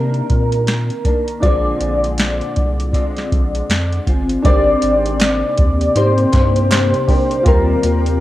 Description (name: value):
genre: indie pop, bedroom pop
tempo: 80 BPM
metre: 4/4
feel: swing 60% on 16ths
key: unclear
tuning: A4 = 443 Hz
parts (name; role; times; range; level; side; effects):
- soft electric-piano-like synth keys; melody; 0.0-8.2 s; Bb4 to D5; -19 LUFS; left 1 dB; phaser, ensemble chorus, analog delay
- nylon-string guitar; accompaniment; 0.0-8.2 s; Bb2 to D5; -22 LUFS; left 2 dB; ensemble chorus, vibrato effect, cassette tape
- warm upright piano; accompaniment; 0.0-8.2 s; D4 to C5; -25 LUFS; right 2 dB; cassette tape
- round analog bass; bass; 0.0-8.2 s; G1 to C3; -19 LUFS; equal; none
- soft vintage rhythm box; drums; 0.1-8.2 s; hi-hat, kick drum, snare drum; -17 LUFS; equal; cassette tape
- granular cloud pad; sustained chords; 5.4-8.2 s; C3 to D5; -24 LUFS; left 1 dB; built-in reverb, cassette tape
- group handclap; percussion; 5.2-6.9 s; none; -28 LUFS; right 1 dB; none
room: light reverb, small room ambience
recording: home recording on cassette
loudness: -13 LUFS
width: side -15 dB against mid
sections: 0.0-4.4 A section; 4.4-8.2 B section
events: none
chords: 0.0 Cm9; 1.4 Bb9; 4.4 Abmaj9#11; 7.5 Eb69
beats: 0.68 | 1.43 2.19 2.94 3.69 | 4.45 5.20 5.96 6.71 | 7.46